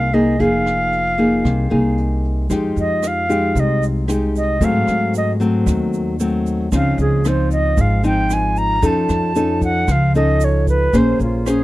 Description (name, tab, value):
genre	bossa nova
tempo	114 BPM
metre	4/4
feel	straight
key	F minor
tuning	A4 = 440 Hz
part	reedy silver concert flute	melody	0.0-11.6 s	F4 to Bb5	-20 LUFS	right 2 dB	none
part	nylon-string guitar	accompaniment	0.0-11.6 s	Ab2 to C5	-18 LUFS	left 1 dB	none
part	upright bass	bass	0.0-11.6 s	F1 to Ab2	-20 LUFS	equal	none
part	jazz brush drum kit	drums	0.1-11.6 s	hi-hat, kick drum, rim click	-24 LUFS	right 1 dB	none
part	tube shaker	percussion	2.5-11.6 s	none	-38 LUFS	right 16 dB	none
room	little or no reverb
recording	dry, close 1970s-style studio recording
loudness	-15 LUFS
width	side -17 dB against mid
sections	0.0-2.5 A section; 2.5-11.6 B section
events	flute solo 2.5-11.6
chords	0.0 Fm7; 2.5 Fm9; 4.6 Ab7b9; 6.7 Dbmaj9; 8.8 Faug7; 10.9 Bbm9